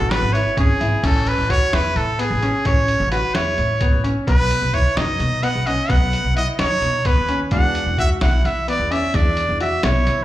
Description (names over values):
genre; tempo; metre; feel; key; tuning
progressive instrumental, band music in an uneven meter; 259 BPM (eighths); 7/8; straight; A major; A4 = 440 Hz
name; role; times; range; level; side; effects
brilliant trumpet; melody; 0.0-10.2 s; G#4 to F#5; -20 LUFS; right 1 dB; slapback echo, ping-pong delay
vintage hollow-body jazz guitar; accompaniment; 0.0-1.0, 7.5-10.2 s; G#3 to F#4; -32 LUFS; left 1 dB; double-tracked left and right, slapback echo
clear baby grand piano; arpeggios; 0.0-10.2 s; B3 to F#4; -25 LUFS; left 1 dB; slapback echo
upright bass; bass; 0.0-10.2 s; G#1 to E3; -21 LUFS; equal; none
lo-fi sampler-style drum kit; drums; 0.1-10.2 s; crash cymbal, hi-hat, kick drum, snare drum; -22 LUFS; equal; none
room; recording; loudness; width
light reverb, small room ambience; live gig heard through the venue's PA, club ambience; -16 LUFS; side -14 dB against mid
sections
0.0-1.0 A section; 1.0-10.2 B section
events
trumpet solo 0.0-1.0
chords
0.0 Amaj7; 1.0 A; 4.3 B; 7.5 E7